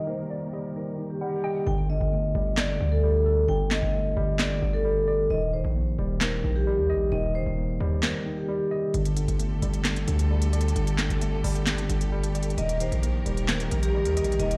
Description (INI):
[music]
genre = hip hop, trap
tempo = 132 BPM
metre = 4/4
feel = half-time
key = G minor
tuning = A4 = 444 Hz
[part]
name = vibraphone with medium mallets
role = melody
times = 0.0-8.9, 12.6-14.6 s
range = G4 to G5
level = -31 LUFS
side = equal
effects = digital delay
[part]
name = tine electric piano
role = accompaniment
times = 0.0-14.6 s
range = D3 to Eb5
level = -32 LUFS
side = equal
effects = overdrive
[part]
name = muted studio string section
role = sustained chords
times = 0.0-1.6, 8.9-14.6 s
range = D3 to Bb4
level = -39 LUFS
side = equal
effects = none
[part]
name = hollow square pluck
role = second line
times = 0.1-1.7 s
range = D5 to G5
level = -42 LUFS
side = equal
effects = chorus, phaser, digital delay
[part]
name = hard-hitting 808-style bass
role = bass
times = 1.7-14.6 s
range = Eb1 to Eb2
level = -29 LUFS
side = equal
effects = none
[part]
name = trap drum kit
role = drums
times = 2.6-14.6 s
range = handclaps, hi-hat, snare drum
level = -32 LUFS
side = equal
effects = overdrive
[sound]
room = little or no reverb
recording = played on a big sound system in a bare room, large studio reverb, low-pass filter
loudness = -26 LUFS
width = mono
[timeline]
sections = 0.0-1.7 A section; 1.7-14.6 B section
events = filter sweep 0.0-1.7; hi-hats muted 1.7-8.9; kick muted 8.0-8.9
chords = 0.0 Eb; 1.7 Gsus2; 5.3 Eb; 8.9 Gsus2; 12.6 Eb